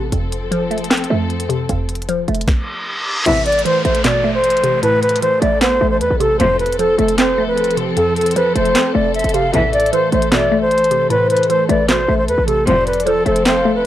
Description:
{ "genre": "hip hop, trap", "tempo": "153 BPM", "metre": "4/4", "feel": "half-time", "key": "A minor", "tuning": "A4 = 438 Hz", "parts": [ { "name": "glassy wavetable pluck", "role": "accompaniment", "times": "0.0-13.9 s", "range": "F2 to C4", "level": "-20 LUFS", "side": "equal", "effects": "chorus" }, { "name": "warm studio string section", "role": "sustained chords", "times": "0.0-13.9 s", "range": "E3 to A4", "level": "-24 LUFS", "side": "left 2 dB", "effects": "none" }, { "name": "short 808-style bass", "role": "bass", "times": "0.0-13.9 s", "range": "F1 to F2", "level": "-22 LUFS", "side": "equal", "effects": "none" }, { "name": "trap drum kit", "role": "drums", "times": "0.1-13.6 s", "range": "crash cymbal, handclaps, hi-hat, kick drum, snare drum", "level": "-20 LUFS", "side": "equal", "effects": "none" }, { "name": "reverse cymbal and downlifter", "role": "sound effects", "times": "2.6-6.4 s", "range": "none", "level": "-25 LUFS", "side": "equal", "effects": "none" }, { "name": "reedy concert flute", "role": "melody", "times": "3.3-13.9 s", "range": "A4 to F5", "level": "-15 LUFS", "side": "equal", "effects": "none" }, { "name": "warm studio string section", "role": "stabs", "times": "3.3-3.4, 6.4-6.6, 9.5-9.7, 12.7-12.8 s", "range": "E2 to F3", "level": "-20 LUFS", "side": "left 1 dB", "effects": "none" }, { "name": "gliding portamento lead", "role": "second line", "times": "9.5-13.8 s", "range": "B4 to F5", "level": "-23 LUFS", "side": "left 2 dB", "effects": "chorus, analog delay" } ], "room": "digital ambience", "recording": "dry, gritty hardware recording", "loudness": "-13 LUFS", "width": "side -12 dB against mid", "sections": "0.0-3.3 A section; 3.3-13.9 B section", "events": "reverse cymbal 2.6-3.3", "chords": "0.1 F; 3.3 Amadd9; 6.4 F; 9.5 Amadd9; 12.7 F" }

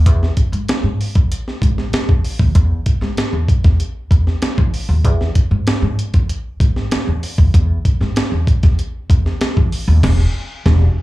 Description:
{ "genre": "funk", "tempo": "96 BPM", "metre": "4/4", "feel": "straight", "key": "unclear", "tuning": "A4 = 440 Hz", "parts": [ { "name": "upright bass", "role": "bass", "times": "0.0-10.9 s", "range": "E1 to E3", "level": "-16 LUFS", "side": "equal", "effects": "none" }, { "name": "breakbeat sampler-style drum kit", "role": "drums", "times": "0.1-10.8 s", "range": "crash cymbal, hi-hat, kick drum, snare drum", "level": "-15 LUFS", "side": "equal", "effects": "none" } ], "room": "little or no reverb", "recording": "live gig heard through the venue's PA, club reverb", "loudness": "-13 LUFS", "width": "side -18 dB against mid", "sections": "0.0-11.0 A section", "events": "band accent 10.0-11.0", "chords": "none" }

